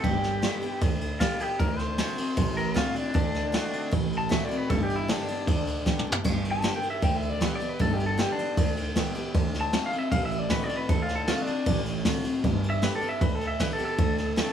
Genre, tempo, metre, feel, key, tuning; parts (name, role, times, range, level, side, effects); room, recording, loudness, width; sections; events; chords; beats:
rockabilly; 155 BPM; 4/4; straight; G major; A4 = 441 Hz
electric guitar through a small old amp; melody; 0.0-14.5 s; D4 to A5; -30 LUFS; left 1 dB; tape echo
picked steel-string acoustic guitar; accompaniment; 0.0-14.5 s; G2 to G4; -34 LUFS; left 4 dB
upright bass; bass; 0.0-14.4 s; G1 to D2; -29 LUFS; right 1 dB
jazz brush drum kit; drums; 0.0-14.5 s; crash cymbal, kick drum, ride cymbal, snare drum, toms; -28 LUFS; right 1 dB
light reverb; -24 LUFS; side -8 dB against mid
0.0-6.3 A section; 6.3-14.5 A section
clean electric guitar solo 0.0-14.5; drum fill 5.9-6.3
0.0 G; 1.6 D7; 4.7 G; 9.3 D7; 12.4 G; 14.0 D7
| 0.04 0.43 0.82 1.21 | 1.60 1.99 2.38 2.76 | 3.15 3.54 3.93 4.32 | 4.70 5.09 5.48 5.86 | 6.25 6.64 7.03 7.41 | 7.80 8.19 8.57 8.96 | 9.35 9.73 10.12 10.51 | 10.89 11.28 11.67 12.05 | 12.44 12.83 13.22 13.60 | 13.99 14.38